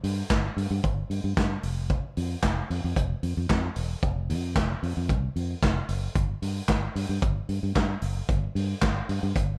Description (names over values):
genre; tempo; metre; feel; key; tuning
disco; 113 BPM; 4/4; straight; unclear; A4 = 441 Hz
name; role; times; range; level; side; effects
fingered electric bass; bass; 0.0-9.5 s; E1 to G2; -30 LUFS; equal; none
vintage drum kit; drums; 0.0-9.5 s; handclaps, hi-hat, kick drum, snare drum; -30 LUFS; equal; none
room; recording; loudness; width
little or no reverb; dark, warm production; -28 LUFS; mono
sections
0.0-9.6 A section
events
none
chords
none